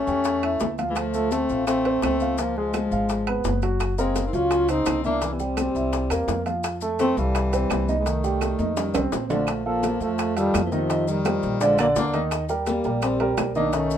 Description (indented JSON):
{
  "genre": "Afro-Cuban jazz",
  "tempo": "169 BPM",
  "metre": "4/4",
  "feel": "straight",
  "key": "F major, Bb major from 9.5 s",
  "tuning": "A4 = 441 Hz",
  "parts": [
    { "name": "dark trombone", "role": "melody", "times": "0.0-14.0 s", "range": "E3 to F4", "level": "-25 LUFS", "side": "equal", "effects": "none" },
    { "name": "bright tenor saxophone", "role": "second line", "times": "0.0-14.0 s", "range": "C3 to Db4", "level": "-31 LUFS", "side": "left 6 dB", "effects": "none" },
    { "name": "warm baby grand piano", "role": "accompaniment", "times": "0.1-14.0 s", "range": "Db3 to G5", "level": "-26 LUFS", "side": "right 2 dB", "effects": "none" },
    { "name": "upright bass", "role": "bass", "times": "0.1-14.0 s", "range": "Gb1 to F2", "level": "-30 LUFS", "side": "equal", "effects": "none" },
    { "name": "congas", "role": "percussion", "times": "0.1-14.0 s", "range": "none", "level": "-34 LUFS", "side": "left 3 dB", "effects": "none" },
    { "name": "maracas", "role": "percussion", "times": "0.1-14.0 s", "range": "none", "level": "-40 LUFS", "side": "left 8 dB", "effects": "none" },
    { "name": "bongos", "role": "percussion", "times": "0.3-14.0 s", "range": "none", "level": "-32 LUFS", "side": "left 5 dB", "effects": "none" },
    { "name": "timbales", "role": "percussion", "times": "0.3-13.9 s", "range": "none", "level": "-32 LUFS", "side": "right 5 dB", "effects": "none" },
    { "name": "claves", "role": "percussion", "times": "0.4-13.6 s", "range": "none", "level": "-38 LUFS", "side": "right 6 dB", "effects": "none" }
  ],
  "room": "light reverb",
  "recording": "minimal, uncompressed stereo recording",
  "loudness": "-21 LUFS",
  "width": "side -9 dB against mid",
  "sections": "0.0-9.5 A section; 9.5-14.0 B section",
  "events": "drum fill 8.4-9.5",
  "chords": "0.0 A7b13; 1.0 Dm7; 2.4 Db7; 3.8 Gbmaj7#11; 5.2 C7; 6.6 Fmaj7; 8.1 Cm; 8.8 Fsus2; 9.5 Bb5; 10.9 Fsus2; 11.6 Bb; 12.3 Eb6"
}